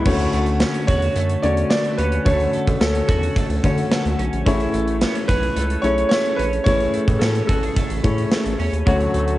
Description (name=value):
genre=1980s-style pop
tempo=109 BPM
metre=4/4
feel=straight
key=unclear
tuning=A4 = 440 Hz
part: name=dark grand piano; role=accompaniment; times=0.0-9.4 s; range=D3 to C#5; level=-22 LUFS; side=left 3 dB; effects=cassette tape
part: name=twelve-string electric guitar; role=riff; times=0.0-9.4 s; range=E3 to G#4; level=-28 LUFS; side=right 4 dB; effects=lush chorus, cassette tape, tape echo
part: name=round analog bass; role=bass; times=0.1-9.4 s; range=A1 to D3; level=-23 LUFS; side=equal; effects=none
part: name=gated 80s drum kit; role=drums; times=0.1-9.4 s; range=crash cymbal, hi-hat, kick drum, snare drum, tambourine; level=-21 LUFS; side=equal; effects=none
part: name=clear concert grand piano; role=melody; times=0.9-8.3 s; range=A4 to D5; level=-23 LUFS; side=right 1 dB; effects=cassette tape
room=moderate spring reverb, RT60 2.8 s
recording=home recording on cassette, nothing above 10.4 kHz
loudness=-17 LUFS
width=side -16 dB against mid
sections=0.1-9.4 A section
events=none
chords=0.1 Dmaj7; 4.5 Amaj7; 8.9 Dmaj7